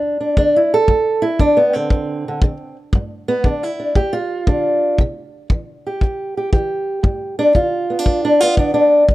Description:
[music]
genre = acoustic country blues, solo or duo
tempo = 117 BPM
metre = 4/4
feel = swing 67% on 8ths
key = G mixolydian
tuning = A4 = 440 Hz
[part]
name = fingerpicked old ladder-braced acoustic guitar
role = melody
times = 0.0-9.1 s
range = D2 to A4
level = -15 LUFS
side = equal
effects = none
[part]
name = kick drum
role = drums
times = 0.4-9.1 s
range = none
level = -15 LUFS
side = equal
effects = none
[sound]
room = small room ambience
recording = dry, close 1970s-style studio recording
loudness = -15 LUFS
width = side -16 dB against mid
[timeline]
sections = 0.0-2.9 A section; 2.9-9.1 A section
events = steel-string acoustic guitar solo 0.0-2.9, 2.9-9.1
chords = 0.0 N.C.; 2.9 G5; 5.0 C; 7.0 G7

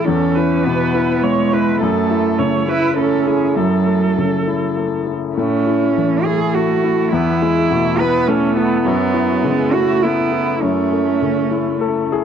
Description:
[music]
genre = neoclassical piano and strings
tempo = 102 BPM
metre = 3/4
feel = rubato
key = F# minor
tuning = A4 = 445 Hz
[part]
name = muted cello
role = second line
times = 0.0-12.1 s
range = F#3 to B4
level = -18 LUFS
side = right 7 dB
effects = none
[part]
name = muted viola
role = accompaniment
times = 0.0-12.1 s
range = F#3 to C#5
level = -22 LUFS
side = right 4 dB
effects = none
[part]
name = warm upright piano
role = accompaniment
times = 0.0-12.2 s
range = E2 to A4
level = -18 LUFS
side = left 8 dB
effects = none
[sound]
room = small room reverb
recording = dry, close 1970s-style studio recording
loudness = -14 LUFS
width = side -8 dB against mid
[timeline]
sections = 0.0-12.2 A section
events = none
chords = 0.1 E5; 1.8 F#m7; 5.4 A; 7.1 Esus4; 8.9 F#m7

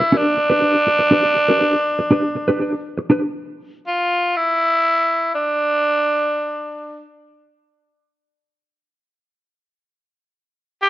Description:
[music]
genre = disco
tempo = 121 BPM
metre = 4/4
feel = straight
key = unclear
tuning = A4 = 444 Hz
[part]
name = breathy tenor saxophone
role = melody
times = 0.0-7.0, 10.8-10.9 s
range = D4 to G4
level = -17 LUFS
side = equal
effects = none
[part]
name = mellow electric guitar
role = accompaniment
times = 0.0-3.3 s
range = D4 to D5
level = -18 LUFS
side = right 1 dB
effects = tremolo
[sound]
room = light reverb, small room ambience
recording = none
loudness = -16 LUFS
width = side -15 dB against mid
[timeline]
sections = 0.0-3.4 A section; 3.4-10.9 B section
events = none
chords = 0.0 Em7 (rootless); 3.4 N.C.

